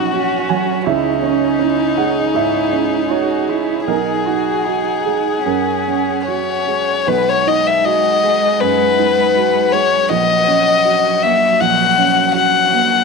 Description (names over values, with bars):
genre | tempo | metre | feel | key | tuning
neoclassical piano and strings | 80 BPM | 4/4 | rubato | unclear | A4 = 444 Hz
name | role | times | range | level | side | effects
warm violin | melody | 0.0-13.0 s | D#4 to F#5 | -15 LUFS | left 6 dB | tape echo
dark cello | second line | 0.0-13.0 s | F#3 to F#4 | -23 LUFS | right 10 dB | none
dark upright piano | accompaniment | 0.0-13.0 s | A#1 to A#5 | -19 LUFS | right 12 dB | none
dark chamber string section | sustained chords | 0.0-13.0 s | C#4 to F#5 | -24 LUFS | left 6 dB | none
room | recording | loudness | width
moderate echo chamber reverb, RT60 1.8 s, studio ambience | 1960s-style stereo with parts hard left and right | -13 LUFS | side -4 dB against mid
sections
0.0-7.1 A section; 7.1-13.0 A section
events
none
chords
0.0 F#/A#; 0.9 C#madd9; 3.9 G#m7/B; 5.5 F#add9; 7.1 B6; 10.1 F#/A#